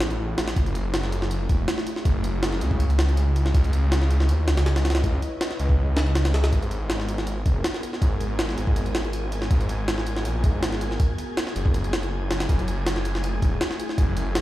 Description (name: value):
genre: drum and bass, jungle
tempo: 161 BPM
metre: 4/4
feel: straight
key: unclear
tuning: A4 = 439 Hz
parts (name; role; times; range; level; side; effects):
- detuned saw bass; bass; 0.0-14.4 s; E1 to D#2; -24 LUFS; equal; none
- jungle sampler-style drum kit; drums; 0.0-14.4 s; hi-hat, kick drum, snare drum; -24 LUFS; equal; none
- wind-like tuned noise texture; texture; 7.2-14.4 s; G#5 to G#6; -39 LUFS; right 1 dB; built-in reverb
room: digital ambience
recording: played on a big sound system in a bare room, stone room reverb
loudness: -21 LUFS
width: side -15 dB against mid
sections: 0.0-14.4 A section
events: none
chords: 0.0 F#m9; 2.8 C#m9; 6.5 G#m9; 11.0 F#m9